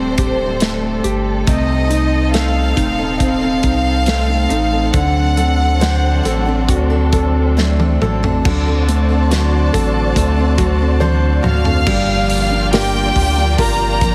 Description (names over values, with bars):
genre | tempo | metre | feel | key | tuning
pop ballad | 70 BPM | 4/4 | straight | unclear | A4 = 439 Hz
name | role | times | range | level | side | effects
warm chamber violin section | melody | 0.0-14.1 s | G4 to F6 | -22 LUFS | equal | delay
clear concert grand piano | accompaniment | 0.0-14.1 s | C3 to C5 | -23 LUFS | equal | none
warm studio string section | sustained chords | 0.0-14.1 s | F#3 to A5 | -26 LUFS | equal | none
warm sub bass | bass | 0.0-14.1 s | D1 to D2 | -20 LUFS | equal | none
modern studio drum kit | drums | 0.2-14.1 s | crash cymbal, hi-hat, kick drum, snare drum, toms | -22 LUFS | equal | none
picked steel-string acoustic guitar | arpeggios | 1.5-14.1 s | G2 to A4 | -24 LUFS | equal | none
room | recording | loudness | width
light reverb | heavily compressed radio sound, multiband compression | -15 LUFS | mono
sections
0.0-8.5 A section; 8.5-11.9 B section; 11.9-14.1 C section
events
drum fill 7.6-8.5, 11.0-11.9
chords
0.0 D7sus4; 1.5 Adim; 4.9 D7; 11.9 Gm7